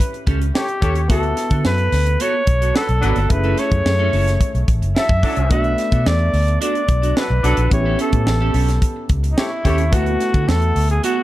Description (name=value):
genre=polished 1980s jazz-funk pop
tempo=109 BPM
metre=4/4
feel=straight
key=B minor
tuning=A4 = 440 Hz
part: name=clear flugelhorn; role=melody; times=0.0-11.2 s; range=D#4 to E5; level=-22 LUFS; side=equal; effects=none
part: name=warm grand piano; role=accompaniment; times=0.0-11.2 s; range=A3 to B4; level=-26 LUFS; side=equal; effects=lush chorus
part: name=tight funk drum kit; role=drums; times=0.0-11.2 s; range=hi-hat, kick drum, snare drum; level=-20 LUFS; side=equal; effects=none
part: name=clean electric guitar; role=riff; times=0.1-11.2 s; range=B3 to A4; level=-26 LUFS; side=right 5 dB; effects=wide subtle chorus
part: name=vintage muted fingered electric bass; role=bass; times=0.3-11.0 s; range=F#1 to D3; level=-18 LUFS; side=equal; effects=none
part: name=mellow horn section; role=second line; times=0.5-9.8 s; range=F#3 to C#5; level=-27 LUFS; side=left 3 dB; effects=none
room=light reverb, small room ambience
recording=dark, warm production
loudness=-15 LUFS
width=side -15 dB against mid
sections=0.0-11.2 A section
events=none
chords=0.0 A7; 1.1 D6; 3.3 F#m7; 5.5 Bm7; 7.7 A7; 9.9 D6